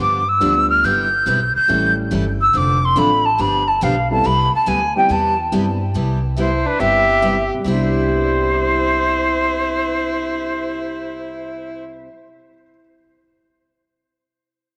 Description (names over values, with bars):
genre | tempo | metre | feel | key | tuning
country, western swing | 141 BPM | 4/4 | swing 68% on 8ths | C major | A4 = 440 Hz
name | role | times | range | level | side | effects
jazz flute | melody | 0.0-11.8 s | B4 to G6 | -20 LUFS | equal | tape echo
picked steel-string acoustic guitar | accompaniment | 0.0-12.1 s | C3 to A4 | -26 LUFS | equal | none
upright bass | bass | 0.0-12.0 s | F1 to G2 | -26 LUFS | equal | none
dark upright piano | accompaniment | 0.4-12.8 s | B2 to G6 | -29 LUFS | equal | none
warm fiddle | second line | 6.4-11.8 s | D4 to G4 | -26 LUFS | equal | none
room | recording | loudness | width
moderate plate reverb, RT60 2.5 s | none | -17 LUFS | mono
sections
0.0-5.9 A section; 5.9-7.7 B section; 7.7-11.1 C section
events
flute solo 0.0-5.9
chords
0.0 G7; 0.8 Cmaj7/G; 1.7 A7; 2.5 Dm7; 3.4 G7; 4.2 Cmaj7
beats
0.41 | 0.84 1.26 1.69 2.12 | 2.54 2.97 3.39 3.82 | 4.25 4.67 5.10 5.52 | 5.95 6.38 6.80 7.23 | 7.65 8.08 8.51 8.93 | 9.36 9.78 10.21 10.63